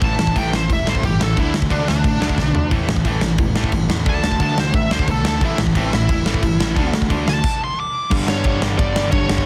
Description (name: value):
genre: punk rock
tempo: 178 BPM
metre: 4/4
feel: straight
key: unclear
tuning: A4 = 440 Hz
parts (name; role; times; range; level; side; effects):
- bluesy overdriven lead guitar; melody; 0.0-9.5 s; C4 to D6; -26 LUFS; equal; distortion
- crunchy overdriven guitar; riff; 0.0-9.5 s; G2 to D4; -26 LUFS; equal; none
- distorted electric guitar; riff; 0.0-9.4 s; G2 to D4; -27 LUFS; equal; distortion
- growling picked electric bass; bass; 0.0-9.4 s; E1 to E2; -25 LUFS; equal; overdrive
- big rock drum kit; drums; 0.0-9.5 s; crash cymbal, kick drum, ride cymbal, snare drum, toms; -22 LUFS; equal; none
room: little or no reverb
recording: dense, heavily limited modern master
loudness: -18 LUFS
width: mono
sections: 0.0-8.1 A section; 8.1-9.5 B section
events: lead electric guitar solo 0.0-8.1; drum fill 2.4-2.7; stop 7.4-8.1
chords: 0.0 A5; 1.4 D5; 2.7 A5; 4.1 D5; 5.4 A5; 6.8 D5; 8.1 G5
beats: | 0.01 0.35 0.69 1.03 | 1.36 1.70 2.04 2.38 | 2.71 3.05 3.39 3.73 | 4.07 4.40 4.74 5.08 | 5.41 5.75 6.09 6.43 | 6.76 7.10 7.44 7.78 | 8.11 8.45 8.79 9.12